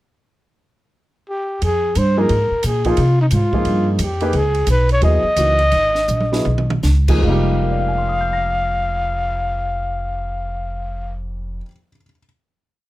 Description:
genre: modal jazz.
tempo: 150-177 BPM.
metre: 4/4.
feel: swing 64% on 8ths.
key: F dorian.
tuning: A4 = 440 Hz.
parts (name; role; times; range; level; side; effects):
breathy trumpet; melody; 1.3-11.2 s; Eb4 to F5; -20 LUFS; equal; none.
upright bass; bass; 1.6-11.6 s; F1 to C3; -19 LUFS; equal; none.
compact cocktail drum kit; drums; 1.6-7.1 s; crash cymbal, hi-hat, kick drum, ride cymbal, snare drum, toms; -26 LUFS; right 2 dB; none.
warm grand piano; accompaniment; 2.2-12.2 s; F2 to Bb6; -23 LUFS; equal; none.
room: little or no reverb.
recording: close, detailed microphones.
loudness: -15 LUFS.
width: side -16 dB against mid.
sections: 0.3-1.6 pickup bar; 1.6-7.2 A section; 7.2-10.4 final chord.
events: slowing down 4.3-7.2; drum fill 6.1-6.8.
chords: 0.3 N.C.; 1.6 Fm11; 4.3 Dbm11; 7.2 Fm11.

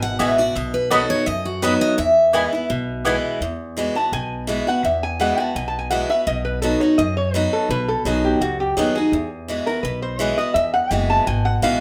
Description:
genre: bluegrass.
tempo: 168 BPM.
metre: 4/4.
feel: straight.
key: E major.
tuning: A4 = 440 Hz.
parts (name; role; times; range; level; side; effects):
picked steel-string acoustic guitar; melody; 0.0-3.0 s; F#4 to F#5; -22 LUFS; equal; none.
picked steel-string acoustic guitar; accompaniment; 0.0-11.8 s; E2 to F#4; -24 LUFS; equal; none.
upright bass; bass; 0.0-11.8 s; F#1 to F#2; -29 LUFS; equal; none.
mandolin; stabs; 0.2-3.2 s; B3 to B5; -23 LUFS; equal; none.
lap resonator guitar; second line; 4.0-11.8 s; F#4 to A5; -24 LUFS; equal; none.
room: moderate studio reverb, RT60 0.6 s.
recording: none.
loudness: -20 LUFS.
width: mono.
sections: 0.0-3.4 A section; 3.4-11.8 A section.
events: steel-string acoustic guitar solo 0.0-3.4; resonator guitar played with a steel bar solo 3.4-11.8.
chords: 0.0 Eadd9; 0.6 B; 2.0 E; 3.4 Eadd9; 6.3 B; 9.1 Eadd9.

